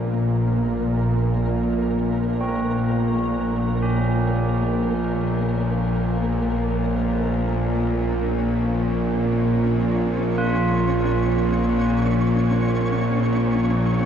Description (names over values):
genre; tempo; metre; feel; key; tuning
dark ambient drone; free time; none; none; Bb minor; A4 = 440 Hz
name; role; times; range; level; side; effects
tubular bells; arpeggios; 0.0-14.1 s; C4 to F4; -32 LUFS; right 1 dB; ping-pong delay, shimmer reverb
bowed-like drone; drone; 0.0-14.1 s; Bb1 to Bb2; -20 LUFS; equal; built-in reverb
flickering grainy texture; texture; 0.0-14.1 s; Bb3 to Db6; -31 LUFS; equal; built-in reverb, shimmer reverb
room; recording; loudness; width
wet huge ambient reverb, RT60 7.8 s; dark, warm production; -19 LUFS; side -8 dB against mid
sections
0.0-14.1 A section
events
fade-in on synth texture 0.0-14.1; fade-in on tubular bells 0.0-14.1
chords
0.0 Bbm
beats
free time